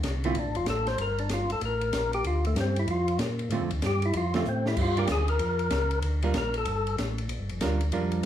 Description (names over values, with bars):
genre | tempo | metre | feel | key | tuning
soul jazz organ trio | 190 BPM | 4/4 | swing 64% on 8ths | unclear | A4 = 442 Hz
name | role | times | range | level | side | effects
tonewheel organ | bass | 0.0-8.2 s | F1 to Bb2 | -28 LUFS | equal | slow rotary speaker
open jazz drum kit | drums | 0.0-8.3 s | crash cymbal, hi-hat, kick drum, ride cymbal, snare drum | -34 LUFS | left 1 dB | none
archtop guitar, miked and amplified | accompaniment | 0.2-0.3, 3.5-8.3 s | D3 to Bb4 | -30 LUFS | right 5 dB | none
percussive tonewheel organ | melody | 0.3-7.0 s | A3 to C5 | -29 LUFS | left 2 dB | slow rotary speaker, overdrive, plate reverb
room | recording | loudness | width
moderate large studio reverb, RT60 0.8 s | small room reverb | -25 LUFS | side -10 dB against mid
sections
0.0-8.3 A section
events
tonewheel organ solo 0.0-8.3; drum fill 4.5-4.8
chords
0.0 Dm7; 1.0 Gm; 2.2 Dm7; 4.8 Gm7